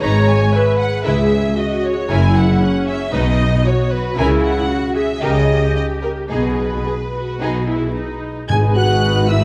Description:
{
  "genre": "classical, dramatic, fast romantic movement for symphony orchestra",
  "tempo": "113 BPM",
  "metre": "4/4",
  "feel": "uneven beats, rubato",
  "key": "G# minor",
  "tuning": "A4 = 440 Hz",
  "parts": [
    { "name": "warm symphonic violin section", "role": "melody", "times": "0.0-9.4 s", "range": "A#4 to G#6", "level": "-26 LUFS", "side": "equal", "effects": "none" },
    { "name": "warm symphonic violin section", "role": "second line", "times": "0.0-9.4 s", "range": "D#4 to G#5", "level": "-28 LUFS", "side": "equal", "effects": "none" },
    { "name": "rich symphonic viola section", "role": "accompaniment", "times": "0.0-9.4 s", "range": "C#4 to C#5", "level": "-24 LUFS", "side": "equal", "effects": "none" },
    { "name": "concert harp", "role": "arpeggios", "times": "0.0-9.4 s", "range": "F#2 to E4", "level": "-26 LUFS", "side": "equal", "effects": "none" },
    { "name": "warm studio double bass section", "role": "bass", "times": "0.0-9.4 s", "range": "F#1 to C#2", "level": "-22 LUFS", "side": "equal", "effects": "none" },
    { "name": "warm symphonic cello section", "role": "bass", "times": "0.0-9.4 s", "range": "C#2 to C#3", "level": "-23 LUFS", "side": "equal", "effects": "none" },
    { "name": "large flute ensemble", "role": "second line", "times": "8.5-9.4 s", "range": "E5 to G#5", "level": "-25 LUFS", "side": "equal", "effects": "none" },
    { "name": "dark French horn section", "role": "sustained chords", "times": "8.5-9.4 s", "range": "E4 to G#4", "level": "-24 LUFS", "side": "equal", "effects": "none" },
    { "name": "timpani", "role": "percussion", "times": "8.5-9.3 s", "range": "G#2", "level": "-21 LUFS", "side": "equal", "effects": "none" }
  ],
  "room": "moderate scoring stage reverb, RT60 1.7 s",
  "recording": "vinyl crackle",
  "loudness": "-17 LUFS",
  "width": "mono",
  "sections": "0.0-8.5 A section",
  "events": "none",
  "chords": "0.0 G#m; 1.1 C#m7; 2.1 F#7; 3.1 B; 4.2 A#dim/C#; 5.2 D#7/C#; 6.3 G#m/B; 8.5 G#m",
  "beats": "| 0.02 0.54 1.06 1.58 | 2.10 2.62 3.13 3.65 | 4.18 4.70 5.22 5.75 | 6.30 6.85 7.40 7.95 | 8.50 9.03"
}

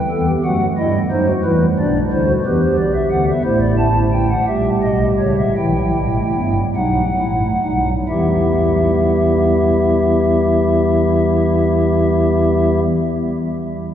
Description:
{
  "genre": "classical, baroque-style 4-part fugue for pipe organ",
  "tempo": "42-60 BPM (dotted quarters)",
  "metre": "6/8",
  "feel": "straight",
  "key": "E minor",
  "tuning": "A4 = 440 Hz",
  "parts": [
    { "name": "pipe organ, stopped flute", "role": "solo", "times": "0.0-12.8 s", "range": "G1 to A5", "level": "-14 LUFS", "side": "equal", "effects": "none" }
  ],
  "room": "wet cathedral reverb, RT60 6.6 s",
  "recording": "heard from further back in the room",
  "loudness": "-14 LUFS",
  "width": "side -10 dB against mid",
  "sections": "0.0-8.1 A section; 8.1-13.8 B section",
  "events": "slowing down 2.4-8.1",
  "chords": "0.5 F#dim7; 1.5 Em; 3.4 Am; 4.5 A#dim7; 5.6 Em; 6.8 B7; 8.1 Em",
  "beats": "0.45 | 1.45 2.45 | 3.44 4.47 | 5.57 6.76 | 8.09 9.50 | 10.93 12.35"
}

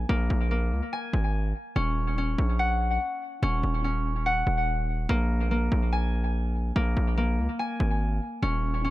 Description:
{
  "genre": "hip hop, drill",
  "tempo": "144 BPM",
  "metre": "4/4",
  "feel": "half-time",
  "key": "unclear",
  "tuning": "A4 = 440 Hz",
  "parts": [
    { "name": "concert harp", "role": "arpeggios", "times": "0.0-8.9 s", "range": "Bb3 to Ab5", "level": "-29 LUFS", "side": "left 1 dB", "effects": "low-pass filter, analog delay" },
    { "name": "distorted 808-style bass", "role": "bass", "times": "0.0-8.9 s", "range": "Eb1 to Db2", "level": "-26 LUFS", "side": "equal", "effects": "distortion" }
  ],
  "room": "small room ambience",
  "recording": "echo-heavy mix",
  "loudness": "-24 LUFS",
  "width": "side -16 dB against mid",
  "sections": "0.0-8.9 A section",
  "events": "none",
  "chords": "0.0 Bb7(no3); 1.8 Ebm7; 5.1 Bbm7",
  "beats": "| 0.09 0.51 0.93 1.34 | 1.76 2.17 2.59 3.01 | 3.42 3.84 4.26 4.67 | 5.09 5.51 5.92 6.34 | 6.76 7.17 7.59 8.01 | 8.43 8.84"
}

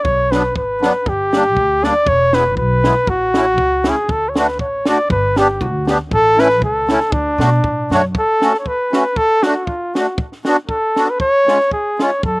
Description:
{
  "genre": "alpine folk, alpine dance band",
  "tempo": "118 BPM",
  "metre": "2/4",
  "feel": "swing 54% on 8ths",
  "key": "D major, F# harmonic minor from 8.1 s",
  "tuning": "A4 = 440 Hz",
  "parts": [
    { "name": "warm flugelhorn", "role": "melody", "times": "0.0-12.4 s", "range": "D4 to D5", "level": "-15 LUFS", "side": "equal", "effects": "none" },
    { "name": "upright bass", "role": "bass", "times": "0.0-8.1, 12.2-12.4 s", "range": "E1 to B2", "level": "-21 LUFS", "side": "equal", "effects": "none" },
    { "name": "compact cocktail drum kit", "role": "drums", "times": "0.0-12.4 s", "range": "kick drum, snare drum", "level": "-21 LUFS", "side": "right 1 dB", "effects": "none" },
    { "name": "accordion", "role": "accompaniment", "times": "0.3-12.1 s", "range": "F#3 to G4", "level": "-18 LUFS", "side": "equal", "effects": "light tremolo tuning" }
  ],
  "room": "little or no reverb",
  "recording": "recorded outdoors, with no room sound",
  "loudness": "-13 LUFS",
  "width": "side -25 dB against mid",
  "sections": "0.0-8.1 A section; 8.1-12.4 B section",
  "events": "none",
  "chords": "0.0 Bm; 1.1 Gm; 2.1 E; 3.1 A; 4.1 D; 5.1 G; 6.1 A; 7.1 D; 8.1 F#m; 9.2 D; 10.2 Bm; 11.2 C#",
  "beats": "| 0.05 0.55 | 1.06 1.56 | 2.06 2.57 | 3.07 3.58 | 4.09 4.60 | 5.10 5.61 | 6.11 6.61 | 7.12 7.63 | 8.14 8.66 | 9.17 9.68 | 10.19 10.70 | 11.21 11.72 | 12.24"
}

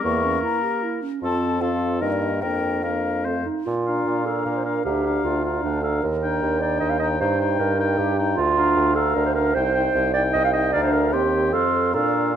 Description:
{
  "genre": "quick classical-period movement for wind quintet",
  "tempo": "152 BPM",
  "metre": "3/4",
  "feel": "straight",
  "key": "Bb major",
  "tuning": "A4 = 441 Hz",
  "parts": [
    { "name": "mellow hollow concert flute", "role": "melody", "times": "0.0-12.3 s", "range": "D5 to C#6", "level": "-29 LUFS", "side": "left 9 dB", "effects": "none" },
    { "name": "clear oboe", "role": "second line", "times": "0.0-12.4 s", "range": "A4 to G5", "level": "-29 LUFS", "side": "left 4 dB", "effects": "none" },
    { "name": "mellow French horn", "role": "accompaniment", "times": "0.0-12.3 s", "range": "A3 to Eb4", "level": "-28 LUFS", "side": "equal", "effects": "none" },
    { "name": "warm clarinet", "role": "accompaniment", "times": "0.0-12.4 s", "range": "Bb3 to F5", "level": "-24 LUFS", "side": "right 4 dB", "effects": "none" },
    { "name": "warm bassoon", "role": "bass", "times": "0.0-12.4 s", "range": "C2 to Bb2", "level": "-25 LUFS", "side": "right 1 dB", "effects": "none" }
  ],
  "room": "moderate recital hall reverb, RT60 1.5 s",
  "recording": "dark, warm production",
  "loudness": "-19 LUFS",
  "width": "side -9 dB against mid",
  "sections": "0.0-3.7 A section; 3.7-12.4 B section",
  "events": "none",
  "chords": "0.0 Edim7; 1.2 F; 2.0 Eb/G; 2.4 Bb/F; 3.3 F; 3.7 Bb; 4.8 Bb/D; 6.0 Ebmaj7; 7.2 Eb/G; 8.4 Bb/D; 9.6 Cm; 10.7 Bb/D; 11.1 Cm/Eb; 11.5 F",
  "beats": "| 0.04 0.44 0.83 | 1.22 1.62 2.02 | 2.43 2.84 3.25 | 3.66 4.06 4.46 | 4.85 5.24 5.64 | 6.03 6.42 6.81 | 7.20 7.59 7.99 | 8.38 8.77 9.16 | 9.55 9.95 10.35 | 10.74 11.14 11.54 | 11.95 12.36"
}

